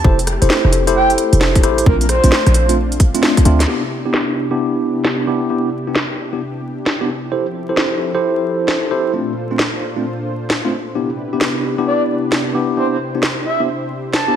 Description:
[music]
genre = UK garage, two-step garage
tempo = 132 BPM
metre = 4/4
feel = swing 65% on 16ths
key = C major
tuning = A4 = 440 Hz
[part]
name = warm analog pad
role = sustained chords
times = 0.0-14.4 s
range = Bb2 to C5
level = -26 LUFS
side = equal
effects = chorus, sidechain pumping
[part]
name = tine electric piano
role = stabs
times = 0.0-14.4 s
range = A3 to C5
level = -18 LUFS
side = equal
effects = slow stereo tremolo, low-pass filter, digital delay
[part]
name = short 808-style bass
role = bass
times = 0.0-3.7 s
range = F1 to D2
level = -15 LUFS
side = equal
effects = none
[part]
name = electronic kick drum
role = drums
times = 0.0-3.4 s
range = none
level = -14 LUFS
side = equal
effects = none
[part]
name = garage drum kit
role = drums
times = 0.2-14.3 s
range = hi-hat, rim click, snare drum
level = -19 LUFS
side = equal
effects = low-pass filter on hats, low-pass filter on snare, low-pass filter on room
[part]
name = breathy flute-like synth lead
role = melody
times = 1.0-2.7, 11.9-14.4 s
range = Bb4 to A5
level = -19 LUFS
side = equal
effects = wide subtle chorus
[sound]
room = light reverb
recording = vinyl crackle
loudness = -14 LUFS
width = side -9 dB against mid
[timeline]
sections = 0.0-3.7 A section; 3.7-14.4 B section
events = drum fill 3.2-3.7; band accent 3.6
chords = 0.0 Fmaj9; 1.9 Bbmaj9; 3.7 Cmaj9; 7.3 Fmaj9; 9.1 Bbmaj9; 11.0 Cmaj9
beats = | 0.04 0.50 0.95 1.41 | 1.86 2.32 2.77 3.23 | 3.68 4.14 4.59 5.04 | 5.50 5.95 6.41 6.86 | 7.32 7.77 8.23 8.68 | 9.14 9.59 10.04 10.50 | 10.95 11.41 11.86 12.32 | 12.77 13.23 13.68 14.14

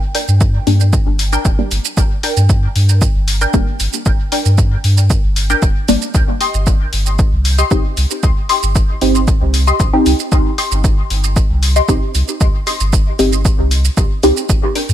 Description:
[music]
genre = dub techno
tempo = 115 BPM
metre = 4/4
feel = straight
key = unclear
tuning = A4 = 444 Hz
[part]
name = filtered dub chord stab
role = riff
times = 0.1-14.9 s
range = D4 to C6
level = -21 LUFS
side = left 2 dB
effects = phaser, analog chorus, sidechain pumping, dub echo
[part]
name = electronic hi-hat and shaker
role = drums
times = 0.1-14.9 s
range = none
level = -22 LUFS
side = right 2 dB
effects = none
[part]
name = soft dub sub bass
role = bass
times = 0.3-14.9 s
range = F1 to G2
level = -14 LUFS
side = equal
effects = sidechain pumping
[part]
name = electronic kick drum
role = drums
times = 0.4-14.6 s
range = none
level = -14 LUFS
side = equal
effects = none
[part]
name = filtered dub chord stab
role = stabs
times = 0.7-14.4 s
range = G3 to G4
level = -17 LUFS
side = equal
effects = chorus, phaser, sidechain pumping, dub echo
[sound]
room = digital ambience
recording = none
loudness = -12 LUFS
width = side -11 dB against mid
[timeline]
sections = 0.0-14.9 A section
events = filter sweep on synth stab 0.0-14.9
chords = 0.0 Gm; 6.1 Cm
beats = 0.41 0.93 1.45 | 1.97 2.50 3.02 3.54 | 4.06 4.58 5.10 5.62 | 6.15 6.67 7.19 7.71 | 8.23 8.76 9.28 9.80 | 10.32 10.84 11.36 11.89 | 12.41 12.93 13.45 13.97 | 14.49

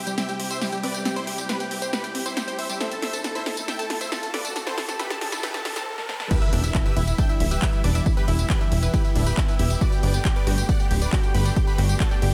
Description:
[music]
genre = uplifting trance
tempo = 137 BPM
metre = 4/4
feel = straight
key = E minor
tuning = A4 = 439 Hz
[part]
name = big supersaw lead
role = melody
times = 0.0-12.3 s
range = C4 to G5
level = -34 LUFS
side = equal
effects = sidechain pumping, dub echo
[part]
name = supersaw stab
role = second line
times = 0.0-12.3 s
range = E5 to G6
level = -37 LUFS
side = equal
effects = sidechain pumping, low-pass filter
[part]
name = rich chamber string section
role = sustained chords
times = 0.0-12.3 s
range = C3 to A4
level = -37 LUFS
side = equal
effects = sidechain pumping
[part]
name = riser, noise sweep and impact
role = sound effects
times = 1.6-8.1 s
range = none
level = -38 LUFS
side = equal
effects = none
[part]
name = analog pluck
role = arpeggios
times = 0.1-12.3 s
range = G3 to A5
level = -37 LUFS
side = equal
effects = chorus, sidechain pumping, dub echo
[part]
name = house drum kit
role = drums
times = 0.1-12.3 s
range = crash cymbal, handclaps, hi-hat, ride cymbal, snare drum, tambourine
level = -33 LUFS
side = equal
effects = sidechain pumping on hats, sidechain pumping on perc, sidechain pumping on cymbals
[part]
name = electronic kick drum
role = drums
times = 6.3-12.1 s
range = none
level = -25 LUFS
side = equal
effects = none
[part]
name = plucky analog bass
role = bass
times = 6.5-12.3 s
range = D1 to G1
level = -24 LUFS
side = equal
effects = sidechain pumping
[sound]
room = light reverb, digital ambience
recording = high-pass filter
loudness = -24 LUFS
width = mono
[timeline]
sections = 0.0-6.3 A section; 6.3-12.3 B section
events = build-up 0.0-6.3; drum fill 0.0-5.9, 6.0-6.3; filter sweep on synth pluck 0.0-6.3; noise sweep 4.6-6.3; break 5.9-6.3; drop 6.3-12.3; impact 6.3-8.1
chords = 0.0 C; 2.8 Am; 6.3 Em; 9.8 Gadd9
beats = 0.18 0.61 | 1.05 1.49 1.93 2.37 | 2.81 3.24 3.68 4.12 | 4.56 5.00 5.43 5.87 | 6.31 6.75 7.18 7.62 | 8.06 8.50 8.94 9.38 | 9.81 10.25 10.69 11.13 | 11.56 12.00

